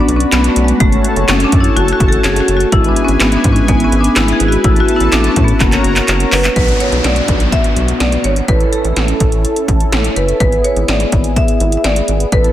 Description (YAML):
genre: synth-pop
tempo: 125 BPM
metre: 4/4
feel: straight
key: B dorian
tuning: A4 = 440 Hz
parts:
  - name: marimba with medium hard mallets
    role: melody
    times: 0.0-12.5 s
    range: G#3 to E5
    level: -16 LUFS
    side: left 2 dB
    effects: none
  - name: mellow synth brass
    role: accompaniment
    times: 0.0-12.5 s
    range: G#3 to A4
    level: -19 LUFS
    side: right 1 dB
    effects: chorus
  - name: warm analog pad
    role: sustained chords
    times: 0.0-6.6 s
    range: E4 to B5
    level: -20 LUFS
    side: left 1 dB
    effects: chorus
  - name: rubbery square bass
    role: bass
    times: 0.1-12.5 s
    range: F#1 to A2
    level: -16 LUFS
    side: equal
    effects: none
  - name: 80s electronic pad drums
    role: drums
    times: 0.1-12.5 s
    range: handclaps, hi-hat, kick drum, snare drum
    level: -14 LUFS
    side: equal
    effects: none
  - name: downlifter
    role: sound effects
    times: 6.6-10.4 s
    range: none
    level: -23 LUFS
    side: equal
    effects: none
room: light reverb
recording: dense, heavily limited modern master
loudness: -10 LUFS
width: side -12 dB against mid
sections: 0.0-6.6 A section; 6.6-12.5 B section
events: drum fill 5.6-6.6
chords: 0.0 Bm; 0.8 F#m; 2.7 E/G#; 4.6 Asus2; 5.6 F#; 6.6 Bm; 8.5 A; 10.4 E/G#